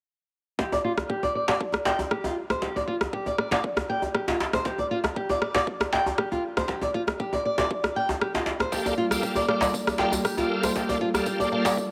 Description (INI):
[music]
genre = afro house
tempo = 118 BPM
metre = 4/4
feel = straight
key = unclear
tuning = A4 = 437 Hz
[part]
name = flamenco guitar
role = arpeggios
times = 0.6-11.8 s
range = F4 to G5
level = -30 LUFS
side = equal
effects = sidechain pumping, low-pass filter, tape echo
[part]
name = electronic kick drum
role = drums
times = 0.6-11.9 s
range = none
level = -37 LUFS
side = equal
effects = high-pass filter on kick
[part]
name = djembe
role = percussion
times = 0.6-11.8 s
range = none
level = -32 LUFS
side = equal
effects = none
[part]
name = electronic rim click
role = drums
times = 1.0-11.2 s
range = none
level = -33 LUFS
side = equal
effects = none
[part]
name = warm analog pad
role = sustained chords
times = 8.7-11.9 s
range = G3 to D5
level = -33 LUFS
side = equal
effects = chorus, sidechain pumping
[part]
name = bright tonewheel organ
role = stabs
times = 8.7-11.7 s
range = Bb3 to F5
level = -32 LUFS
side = equal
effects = chorus vibrato, slow rotary speaker, sidechain pumping, tape echo
[part]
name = tambourine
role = percussion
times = 8.7-11.9 s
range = none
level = -39 LUFS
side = equal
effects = none
[sound]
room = moderate lush hall reverb, RT60 1.9 s, small room ambience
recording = none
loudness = -26 LUFS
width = mono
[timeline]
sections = 0.6-11.9 A section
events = none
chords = 0.6 Fsus2; 8.7 Gm9